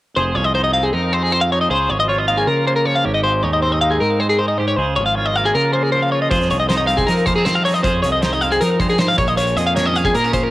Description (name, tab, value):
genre	math rock and midwest emo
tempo	156 BPM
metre	4/4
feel	straight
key	F minor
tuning	A4 = 440 Hz
part	twangy electric guitar	accompaniment	0.2-10.5 s	F2 to Db5	-24 LUFS	right 5 dB	none
part	twelve-string electric guitar	arpeggios	0.2-10.5 s	Ab4 to F5	-17 LUFS	left 2 dB	harmonic tremolo, analog delay
part	fuzz fingered electric bass	bass	0.2-10.5 s	F1 to F3	-21 LUFS	equal	overdrive
part	loose indie drum kit	drums	6.3-10.4 s	hi-hat, kick drum, snare drum	-23 LUFS	equal	cassette tape
room	light reverb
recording	home recording on cassette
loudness	-14 LUFS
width	side -17 dB against mid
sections	0.2-10.5 A section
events	none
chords	0.2 Fm7; 1.7 Db6; 3.0 Abmaj7; 4.8 Db6; 6.3 Fm7; 9.2 Bbm7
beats	| 0.16 0.55 0.93 1.31 | 1.70 2.08 2.47 2.85 | 3.24 3.62 4.01 4.39 | 4.78 5.16 5.55 5.93 | 6.31 6.70 7.08 7.46 | 7.85 8.23 8.61 9.00 | 9.38 9.76 10.15